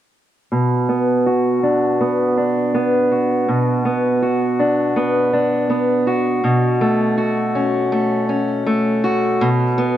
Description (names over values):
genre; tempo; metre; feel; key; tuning
folktronica; 81 BPM; 4/4; straight; B minor; A4 = 440 Hz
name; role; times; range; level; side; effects
fingerpicked steel-string acoustic guitar; arpeggios; 0.5-10.0 s; B2 to F#4; -15 LUFS; equal; low-pass filter, ping-pong delay
room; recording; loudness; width
moderate plate reverb, RT60 2.5 s; none; -15 LUFS; side -12 dB against mid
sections
0.5-10.0 A section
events
filter sweep on steel-string acoustic guitar 0.5-10.0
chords
0.5 Bm; 6.4 F#m/B; 9.4 C#5/B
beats
| 0.52 1.26 2.00 2.74 | 3.48 4.22 4.96 5.71 | 6.45 7.19 7.93 8.67 | 9.41